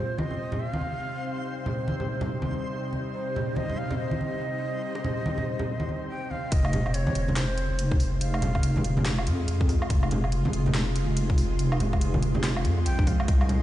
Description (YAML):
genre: deep dubstep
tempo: 142 BPM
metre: 4/4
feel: swing 61% on 16ths, half-time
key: F minor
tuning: A4 = 441 Hz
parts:
  - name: breathy bright ney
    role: melody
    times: 0.0-9.0, 12.9-13.6 s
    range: C5 to G5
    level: -35 LUFS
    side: right 1 dB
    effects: dub echo
  - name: bowed-like drone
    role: sustained chords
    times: 0.0-13.6 s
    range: C3 to G4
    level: -35 LUFS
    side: equal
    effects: built-in reverb
  - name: backwards swelling texture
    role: texture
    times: 0.0-13.6 s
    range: Ab3 to C6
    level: -37 LUFS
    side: equal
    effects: built-in reverb
  - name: congas and bongos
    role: percussion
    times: 0.2-13.6 s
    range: none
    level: -31 LUFS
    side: right 1 dB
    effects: none
  - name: deep soft wobble bass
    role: bass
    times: 6.5-13.6 s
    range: F1 to F2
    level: -25 LUFS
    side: equal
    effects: chorus
  - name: electronic kick drum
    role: drums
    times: 6.5-13.4 s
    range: none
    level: -23 LUFS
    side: equal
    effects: overdrive
  - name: garage drum kit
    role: drums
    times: 6.5-13.6 s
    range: handclaps, hi-hat, snare drum, woodblock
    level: -34 LUFS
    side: right 1 dB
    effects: overdrive
room: light reverb, digital ambience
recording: played on a big sound system in a bare room, stone room reverb, nothing above 10.4 kHz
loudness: -24 LUFS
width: side -14 dB against mid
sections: 0.0-6.5 A section; 6.5-13.6 B section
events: filter sweep on synth drone 0.0-6.5; drop 6.5-13.6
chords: 0.0 Cm; 6.5 Fm